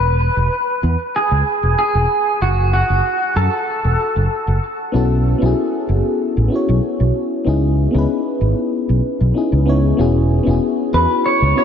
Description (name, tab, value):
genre	sunset chillout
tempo	95 BPM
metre	4/4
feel	straight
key	E major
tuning	A4 = 440 Hz
part	clean electric guitar	melody	0.0-4.6, 10.9-11.6 s	F#4 to C#5	-18 LUFS	right 1 dB	lush chorus, ping-pong delay
part	fretless electric bass	bass	0.0-11.5 s	E1 to F#2	-16 LUFS	equal	ensemble chorus
part	mellow FM electric piano	accompaniment	4.9-11.6 s	B3 to C#5	-18 LUFS	left 2 dB	chorus, auto-pan, cassette tape, analog delay
room	wet cathedral reverb, RT60 5.5 s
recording	dreamy mix soaked in reverb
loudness	-14 LUFS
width	side -8 dB against mid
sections	0.0-11.6 A section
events	none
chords	0.0 E; 2.1 F#m; 4.9 B7sus4; 7.5 C#m9; 10.0 E6